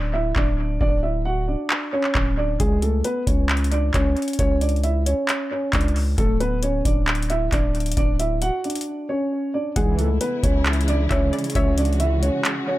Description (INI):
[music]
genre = hip hop, trap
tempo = 134 BPM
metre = 4/4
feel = half-time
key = C# phrygian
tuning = A4 = 441 Hz
[part]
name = dark concert grand piano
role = melody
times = 0.0-12.8 s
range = G#3 to F#5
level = -24 LUFS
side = right 1 dB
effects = low-pass filter, analog delay
[part]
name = long sustained 808-style bass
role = bass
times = 0.0-12.3 s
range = D1 to C#2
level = -22 LUFS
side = equal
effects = none
[part]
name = booming analog drum machine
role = drums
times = 0.4-12.6 s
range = handclaps, hi-hat, kick drum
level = -23 LUFS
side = equal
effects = analog delay
[part]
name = hollow square pluck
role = second line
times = 9.8-12.4 s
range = D5 to F#5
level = -34 LUFS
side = left 5 dB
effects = chorus, analog delay
[part]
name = dark symphonic string section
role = sustained chords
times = 9.8-12.8 s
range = C#3 to F#4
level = -29 LUFS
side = equal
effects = none
[part]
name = mellow synth brass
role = stabs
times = 9.8-10.1 s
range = C#2 to E3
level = -28 LUFS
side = equal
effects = chorus
[sound]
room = digital ambience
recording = echo-heavy mix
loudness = -19 LUFS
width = side -16 dB against mid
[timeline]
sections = 0.0-9.8 A section; 9.8-12.8 B section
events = break 0.0-2.6, 8.9-9.8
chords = 0.0 N.C.; 9.8 C#m